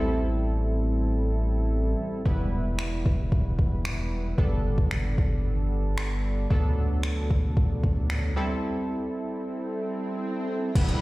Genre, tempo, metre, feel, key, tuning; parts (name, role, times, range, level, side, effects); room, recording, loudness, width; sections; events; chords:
dance-pop; 113 BPM; 4/4; straight; A4 = 437 Hz
funky polysynth comp; accompaniment; 0.0-11.0 s; F#3 to B4; -30 LUFS; right 1 dB; chorus, sidechain pumping, slapback echo
round analog bass; bass; 0.0-10.9 s; E1 to D2; -26 LUFS; equal; sidechain pumping
smooth R&B drum kit; drums; 2.3-11.0 s; crash cymbal, finger snaps, hi-hat, kick drum; -25 LUFS; equal
swell and downlifter; sound effects; 9.1-11.0 s; -37 LUFS; equal; slapback echo
digital ambience; live gig heard through the venue's PA, recital hall reverb; -24 LUFS; side -20 dB against mid
0.0-10.8 A section
break 8.6-10.8; swell 9.1-10.8
0.0 Am7; 2.3 Em; 4.4 Gadd9; 6.5 D6; 8.4 Am7